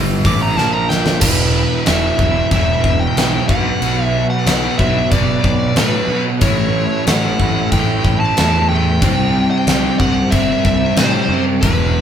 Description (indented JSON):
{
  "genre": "hard rock",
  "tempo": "92 BPM",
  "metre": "4/4",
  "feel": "straight",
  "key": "E minor",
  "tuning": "A4 = 438 Hz",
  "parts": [
    { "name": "overdriven tonewheel organ", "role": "sustained chords", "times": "0.0-12.0 s", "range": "E3 to G5", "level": "-30 LUFS", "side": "left 1 dB", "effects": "none" },
    { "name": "crunchy overdriven guitar", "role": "riff", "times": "0.0-12.0 s", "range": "E2 to C4", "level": "-22 LUFS", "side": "left 7 dB", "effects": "harmonic tremolo" },
    { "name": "overdriven semi-hollow guitar", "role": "riff", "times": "0.0-12.0 s", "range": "E2 to C4", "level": "-19 LUFS", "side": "right 6 dB", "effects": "none" },
    { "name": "fuzz fingered electric bass", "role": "bass", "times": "0.0-12.0 s", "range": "E1 to B2", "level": "-21 LUFS", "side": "equal", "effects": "overdrive" },
    { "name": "huge arena drum kit", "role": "drums", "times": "0.2-11.8 s", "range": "crash cymbal, hi-hat, kick drum, snare drum", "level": "-18 LUFS", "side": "left 1 dB", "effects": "none" },
    { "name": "bluesy overdriven lead guitar", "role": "melody", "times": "0.3-12.0 s", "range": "B4 to D6", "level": "-20 LUFS", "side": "left 1 dB", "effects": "distortion" }
  ],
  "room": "moderate large studio reverb, RT60 1.4 s",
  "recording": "band playing live in one room",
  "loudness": "-13 LUFS",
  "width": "side -9 dB against mid",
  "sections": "0.0-1.2 A section; 1.2-12.0 B section",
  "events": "lead electric guitar solo 0.0-1.2; drum fill 0.6-1.2",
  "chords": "0.0 Em; 0.6 A#5; 1.2 Em; 3.5 B5; 6.4 A; 9.0 C5"
}